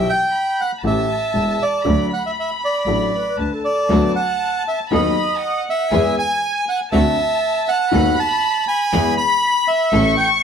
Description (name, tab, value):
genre	tango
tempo	119 BPM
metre	4/4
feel	rubato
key	D major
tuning	A4 = 436 Hz
part	bandoneon	melody	0.0-10.3 s	D5 to B5	-19 LUFS	right 2 dB	none
part	warm chamber violin section	second line	0.0-10.4 s	F#5 to C#6	-24 LUFS	left 3 dB	none
part	warm upright piano	accompaniment	0.0-10.1 s	E1 to A4	-21 LUFS	left 4 dB	none
part	clear double bass	bass	0.0-10.1 s	E1 to E2	-21 LUFS	right 1 dB	none
part	mellow concert flute	second line	3.1-3.9 s	A4 to B4	-27 LUFS	left 6 dB	none
part	warm chamber string section	stabs	3.9-10.1 s	B3 to A4	-27 LUFS	left 1 dB	none
room	wet small room reverb, RT60 0.5 s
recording	band playing live in one room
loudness	-16 LUFS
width	side -7 dB against mid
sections	0.0-3.9 A section; 3.9-10.4 A section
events	none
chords	0.0 Em; 0.8 A7; 1.9 D; 3.9 D6; 4.9 B7/D#; 5.9 E; 6.9 D7; 7.9 B7/D#; 8.9 E; 9.9 A